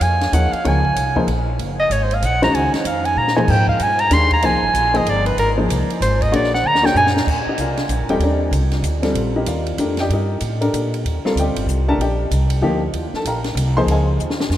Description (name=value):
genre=modal jazz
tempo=191 BPM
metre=3/4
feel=swing 63% on 8ths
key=Gb lydian, Eb lydian from 7.3 s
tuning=A4 = 440 Hz
part: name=mellow soprano saxophone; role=melody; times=0.0-7.1 s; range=Bb4 to C6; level=-18 LUFS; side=right 1 dB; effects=none
part: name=upright bass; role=bass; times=0.0-14.6 s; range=Eb1 to Bb2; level=-20 LUFS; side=equal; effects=none
part: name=compact cocktail drum kit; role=drums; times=0.0-14.6 s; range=crash cymbal, hi-hat, kick drum, ride cymbal, snare drum, toms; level=-27 LUFS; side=equal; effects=none
part: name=warm baby grand piano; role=accompaniment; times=0.3-14.2 s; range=Eb3 to C6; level=-21 LUFS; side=left 2 dB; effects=none
room=wet cathedral reverb, RT60 7.1 s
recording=in a vast, echoing space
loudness=-15 LUFS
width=side -12 dB against mid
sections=0.0-7.3 A section; 7.3-14.6 A section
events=soprano saxophone solo 0.0-7.3; drum fill 3.2-3.5, 6.6-7.3, 14.2-14.5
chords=0.0 Gbmaj9; 3.5 Abmaj9; 6.3 Bb7alt; 7.3 Ebmaj9; 13.9 Db69